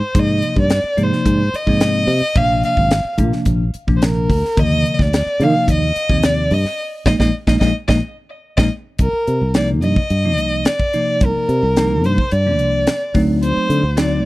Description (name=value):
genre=electric jazz fusion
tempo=108 BPM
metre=4/4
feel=straight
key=C dorian from 9.0 s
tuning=A4 = 435 Hz
part: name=rich violin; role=melody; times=0.0-14.3 s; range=Bb4 to F5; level=-20 LUFS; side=equal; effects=none
part: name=fretless electric bass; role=bass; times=0.0-14.2 s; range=Ab1 to Eb3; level=-18 LUFS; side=equal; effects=none
part: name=crisp fusion drum kit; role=drums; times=0.1-14.1 s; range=hi-hat, kick drum, snare drum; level=-18 LUFS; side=equal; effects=none
part: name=bell-like tine electric piano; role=accompaniment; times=0.2-14.3 s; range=C3 to Eb4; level=-20 LUFS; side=equal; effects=medium stereo tremolo
room=little or no reverb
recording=dry, close 1970s-style studio recording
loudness=-14 LUFS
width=side -18 dB against mid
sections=0.0-9.0 A section; 9.0-14.3 B section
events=band accent 6.8-9.0; tine electric piano fill 8.2-9.0; drum fill 8.4-9.0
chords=0.1 Abadd9; 2.4 Bbadd9; 4.6 Ebmaj7sus2; 6.8 Bb7sus4; 9.0 Cm9; 13.2 D7b9